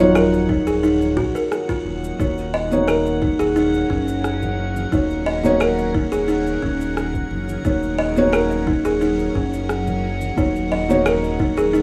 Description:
organic downtempo; 88 BPM; 4/4; straight; A4 = 440 Hz
felt-muted upright piano; accompaniment; 0.0-11.8 s; F3 to Db5; -24 LUFS; equal; sidechain pumping, tape echo
bowed-like drone; sustained chords; 0.0-11.8 s; Eb3 to Gb5; -36 LUFS; equal; built-in reverb, phaser, sidechain pumping
smooth gliding synth bass; bass; 0.0-11.8 s; Eb1 to Bb1; -29 LUFS; equal
drifting glass-harmonics texture; texture; 0.0-11.8 s; Gb5; -35 LUFS; equal; chorus, built-in reverb
buzzing kalimba; arpeggios; 0.2-11.8 s; Db4 to Eb5; -23 LUFS; equal; tape echo
electronic rim click, claves and cabasa; drums; 0.2-11.8 s; -29 LUFS; equal
electronic kick drum; drums; 0.5-11.5 s; -27 LUFS; equal
congas and bongos; percussion; 2.7-11.7 s; -35 LUFS; equal
light reverb; rough home demo mix, small room ambience; -20 LUFS; mono
0.0-11.8 A section
0.0 Ebm9; 2.2 Gb6/Eb
0.15 0.83 1.51 | 2.19 2.88 3.56 4.24 | 4.92 5.60 6.29 6.97 | 7.65 8.33 9.01 9.70 | 10.38 11.06 11.74

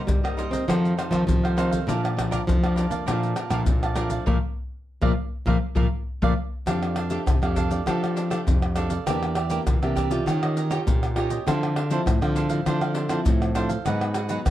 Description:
samba and choro; 100 BPM; 4/4; straight; Bb major, F major from 6.7 s; A4 = 440 Hz
nylon-string guitar; accompaniment; 0.0-14.5 s; F2 to G4; -28 LUFS; left 2 dB
nylon-string guitar; bass; 0.1-14.5 s; E2 to C4; -26 LUFS; right 1 dB
maracas, surdo, pandeiro and tamborim; percussion; 0.1-14.5 s; -25 LUFS; left 1 dB
cavaquinho; accompaniment; 0.2-14.4 s; D4 to A5; -30 LUFS; right 5 dB
moderate studio reverb, RT60 0.6 s; dark, warm production; -21 LUFS; side -13 dB against mid
0.0-6.7 A section; 6.7-14.5 B section
band accent 4.3-6.7
0.0 Cm7; 0.7 F7; 1.9 Bbmaj7; 6.7 F69; 9.1 Em7b5; 10.3 Eb9; 11.5 Dm9; 13.9 Abm7
0.08 0.68 1.27 | 1.87 2.47 3.07 3.67 | 4.27 4.87 5.47 6.07 | 6.67 7.27 7.87 8.47 | 9.07 9.66 10.27 10.86 | 11.46 12.06 12.66 13.26 | 13.86 14.46

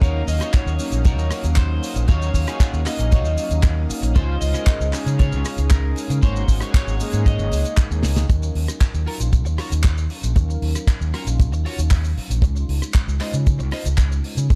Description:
nu-disco, nu disco; 116 BPM; 4/4; straight; Eb dorian; A4 = 441 Hz
electric guitar at the edge of break-up; melody; 0.0-7.7 s; Bb4 to Eb5; -34 LUFS; equal; spring reverb, dub echo
mellow synth brass; accompaniment; 0.0-14.6 s; Gb3 to C6; -33 LUFS; equal; chorus, sidechain pumping, analog delay
lush unison pad; sustained chords; 0.0-8.3 s; Gb3 to Eb6; -41 LUFS; equal
electric guitar at the edge of break-up; riff; 0.0-14.5 s; Db4 to Eb5; -36 LUFS; equal; analog chorus, analog delay
overdriven fingered electric bass; bass; 0.0-14.6 s; Ab1 to Db3; -23 LUFS; equal
damped 70s drum kit; drums; 0.0-14.6 s; handclaps, hi-hat, rim click, shaker, snare drum; -33 LUFS; equal; small room ambience
kick drum; drums; 0.0-14.6 s; -18 LUFS; equal; small room ambience
small room ambience; echo-heavy mix; -20 LUFS; mono
0.0-8.3 A section; 8.3-14.6 B section
drop 0.0-8.3; drum fill 8.0; filter sweep on analog polysynth 8.3-14.6
0.0 Ebm9; 4.2 Dbmaj7; 6.2 Ab7sus4; 8.3 Ebm9; 12.4 Dbmaj7
| 0.02 0.54 1.05 1.57 | 2.09 2.61 3.12 3.64 | 4.16 4.67 5.19 5.71 | 6.23 6.74 7.26 7.78 | 8.30 8.81 9.33 9.85 | 10.37 10.88 11.40 11.92 | 12.43 12.95 13.47 13.99 | 14.50

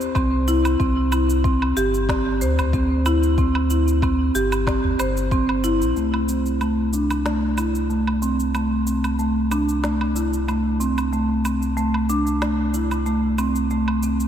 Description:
organic downtempo; 93 BPM; 4/4; swing 54% on 16ths; C major; A4 = 440 Hz
electronic cabasa, woodblock and snare drum; drums; 0.0-14.3 s; -30 LUFS; right 2 dB; overdrive
marimba with medium hard mallets; arpeggios; 0.1-14.2 s; A3 to C5; -21 LUFS; right 1 dB; low-pass filter, diffuse ambient delay
warm sub bass; bass; 0.2-14.3 s; G1 to D2; -24 LUFS; left 1 dB; sidechain pumping
electronic kick drum; drums; 0.2-5.5 s; -24 LUFS; left 1 dB; overdrive
udu; percussion; 2.6-5.0 s; -32 LUFS; right 1 dB
wet cathedral reverb, RT60 5.1 s; dreamy mix soaked in reverb; -18 LUFS; side -9 dB against mid
0.0-6.0 A section; 6.0-14.3 B section
filter sweep on marimba 6.0-14.3
0.0 Cadd9; 6.0 C5
0.16 | 0.80 1.45 2.09 2.74 | 3.38 4.03 4.67 5.32 | 5.96 6.61 7.25 7.90 | 8.54 9.19 9.84 10.48 | 11.12 11.77 12.41 13.06 | 13.71

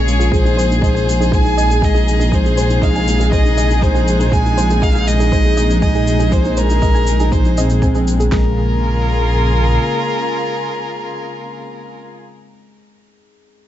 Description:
piano and strings electronica; 120 BPM; 4/4; straight; A4 = 443 Hz
rich violin; melody; 0.0-12.0 s; Bb4 to Ab5; -22 LUFS; equal; diffuse ambient delay
dark studio string section; sustained chords; 0.0-12.2 s; C3 to Ab4; -22 LUFS; left 2 dB
felt-muted upright piano; riff; 0.0-13.7 s; Ab3 to Ab4; -22 LUFS; left 2 dB; diffuse ambient delay
dark detuned saw bass; bass; 0.0-9.8 s; Bb1; -16 LUFS; equal; sidechain pumping
shaker; drums; 0.1-8.3 s; -31 LUFS; left 1 dB
soft round pluck; arpeggios; 0.2-8.6 s; Ab4 to Ab5; -27 LUFS; right 2 dB; chorus, sidechain pumping, diffuse ambient delay
deep house drum kit; drums; 0.3-8.4 s; kick drum, snare drum; -16 LUFS; equal
light reverb, small room ambience; nothing above 7.9 kHz; -12 LUFS; side -12 dB against mid
0.0-8.3 A section; 8.3-12.3 B section
drop 0.0-8.3
0.3 Ab/Bb; 8.3 Bbm7
| 0.33 0.82 1.32 1.82 | 2.33 2.83 3.33 3.83 | 4.33 4.83 5.33 5.83 | 6.33 6.83 7.33 7.83 | 8.32 8.82 9.32 9.82 | 10.32 10.82 11.32 11.82

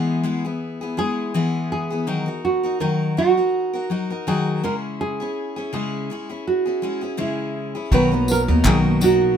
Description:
acoustic pop; 82 BPM; 4/4; swing 55% on 16ths; B major; A4 = 441 Hz
nylon-string guitar; melody; 0.0-9.4 s; E4 to B4; -22 LUFS; right 4 dB
picked steel-string acoustic guitar; accompaniment; 0.0-9.4 s; B2 to A#4; -22 LUFS; left 3 dB
flamenco guitar; arpeggios; 7.9-9.4 s; F#3 to F#4; -27 LUFS; right 8 dB
upright bass; bass; 7.9-9.4 s; B1 to D#2; -21 LUFS; right 1 dB
unplugged drum kit; drums; 7.9-9.2 s; handclaps, kick drum, tambourine; -22 LUFS; equal
light reverb; minimal, uncompressed stereo recording; -19 LUFS; side -8 dB against mid
0.0-7.9 A section; 7.9-9.4 B section
0.0 E; 2.1 D#m; 4.6 C#m; 7.9 Bmaj7
0.61 1.35 | 2.08 2.81 3.54 4.27 | 5.00 5.73 6.46 7.19 | 7.92 8.65

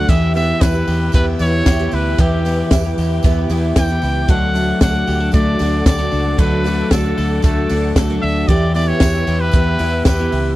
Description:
jangly indie pop; 114 BPM; 4/4; straight; A4 = 440 Hz
clear trumpet; melody; 0.0-10.6 s; G4 to G5; -22 LUFS; equal
picked twelve-string acoustic guitar; accompaniment; 0.0-10.6 s; D3 to G4; -24 LUFS; right 5 dB; ensemble chorus
string machine, violas; sustained chords; 0.0-10.6 s; A4 to E6; -30 LUFS; equal; phaser, ensemble chorus
electric guitar at the edge of break-up; arpeggios; 0.0-10.6 s; E3 to A4; -20 LUFS; left 3 dB; spring reverb
vintage muted fingered electric bass; bass; 0.0-10.5 s; C#2 to E2; -19 LUFS; equal
compact cocktail drum kit; drums; 0.1-10.4 s; hi-hat, kick drum, ride cymbal, snare drum; -14 LUFS; equal
tambourine; percussion; 0.1-10.4 s; -37 LUFS; right 11 dB
little or no reverb; dry, close 1970s-style studio recording; -13 LUFS; side -16 dB against mid
0.0-10.6 A section
0.1 Em; 4.3 D; 8.5 Em
| 0.09 0.61 1.14 1.66 | 2.19 2.71 3.23 3.76 | 4.29 4.81 5.33 5.86 | 6.38 6.91 7.44 7.96 | 8.49 9.01 9.54 10.06

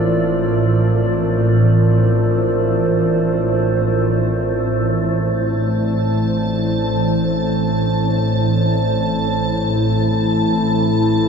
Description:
dark ambient drone; free time; A minor; A4 = 440 Hz
dark analog pad; sustained chords; 0.0-11.3 s; A2 to D5; -18 LUFS; equal; lush chorus
organ-like drone; drone; 0.0-11.3 s; A1 to A2; -18 LUFS; right 2 dB; ensemble chorus, built-in reverb
icy glass pad; texture; 5.7-11.3 s; A5; -25 LUFS; equal; chorus, built-in reverb
wet huge ambient reverb, RT60 7.9 s; studio reverb; -15 LUFS; side -6 dB against mid
0.0-5.2 A section; 5.2-11.3 B section
filter sweep on synth drone 5.2-11.3
0.0 Bb/A; 5.2 Am
free time

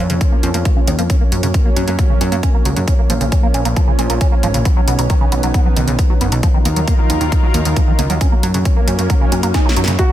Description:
uplifting trance; 135 BPM; 4/4; straight; A4 = 440 Hz
lush unison pad; sustained chords; 0.0-10.1 s; D#3 to F5; -22 LUFS; right 1 dB; chorus, sidechain pumping
liquid acid bass; arpeggios; 0.0-10.1 s; Db3 to Db4; -22 LUFS; right 2 dB; phaser, sidechain pumping, tape echo
plucky analog bass; bass; 0.0-10.0 s; F#1 to Gb2; -17 LUFS; equal; sidechain pumping
big-room dance drum kit; drums; 0.1-10.1 s; hi-hat, snare drum; -24 LUFS; equal; studio reverb
electronic kick drum; drums; 0.2-10.1 s; -14 LUFS; equal; overdrive, studio reverb
swell; sound effects; 9.3-10.0 s; -26 LUFS; right 2 dB
dark concert grand piano; second line; 10.0-10.1 s; Gb4; -17 LUFS; right 1 dB
little or no reverb; dense, heavily limited modern master; -12 LUFS; side -12 dB against mid
0.0-10.1 A section
filter sweep on acid bass 0.0-10.1; filter sweep on analog synth pad 0.0-10.1; swell 9.3-10.0; drum fill 9.5-10.0
0.0 Bbm/F; 1.1 Gb; 2.9 Bbm; 4.7 Badd9; 6.4 Ebmadd9; 8.2 Gb
0.21 0.65 | 1.10 1.54 1.99 2.43 | 2.88 3.32 3.77 4.21 | 4.65 5.10 5.54 5.99 | 6.43 6.88 7.32 7.76 | 8.21 8.65 9.10 9.54 | 9.99

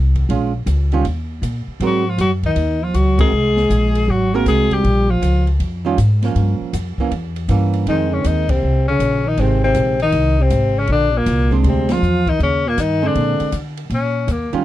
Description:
jazz, small-group swing and bop; 159 BPM; 4/4; swing 65% on 8ths; A4 = 445 Hz
upright bass; bass; 0.0-14.6 s; Ab1 to D3; -18 LUFS; equal
open jazz drum kit; drums; 0.2-14.6 s; hi-hat, kick drum, ride cymbal, snare drum; -27 LUFS; equal
archtop guitar, miked and amplified; accompaniment; 0.3-14.6 s; Eb3 to Bb4; -21 LUFS; right 7 dB
dark trombone; second line; 1.8-5.5, 7.9-13.5 s; Bb2 to Bb3; -20 LUFS; right 2 dB
clear tenor saxophone; melody; 1.9-5.5, 7.9-14.5 s; Bb3 to Bb4; -20 LUFS; left 5 dB
little or no reverb; dry, close 1970s-style studio recording; -15 LUFS; side -14 dB against mid
0.0-13.9 A section
band accent 3.1, 8.4, 11.8
0.3 Bbm7; 1.1 Eb5; 1.8 Ab9; 4.8 Eb9 (rootless); 6.4 Gm7b5; 7.1 Edim7; 7.9 Fm7 (rootless); 10.9 Bb9; 12.4 Eb; 13.2 Bb9; 13.9 Eb9
| 0.29 0.67 1.05 1.43 | 1.81 2.19 2.57 2.95 | 3.33 3.71 4.08 4.46 | 4.84 5.22 5.60 5.98 | 6.36 6.74 7.11 7.49 | 7.87 8.25 8.63 9.01 | 9.38 9.76 10.14 10.52 | 10.89 11.27 11.65 12.03 | 12.40 12.78 13.16 13.53 | 13.91 14.29

